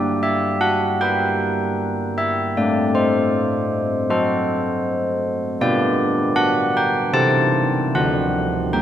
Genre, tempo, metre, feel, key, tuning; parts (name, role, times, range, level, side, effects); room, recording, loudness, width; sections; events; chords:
classical, tune for church bells; 78 BPM; 4/4; straight; G major; A4 = 440 Hz
carillon bells; solo; 0.0-8.8 s; D3 to A5; -17 LUFS; equal
wet church reverb, RT60 2.6 s; -17 LUFS; side -10 dB against mid
0.0-8.8 A section
0.0 G; 2.6 F#dim/A; 5.6 G/B; 7.1 Am7/C; 7.9 D7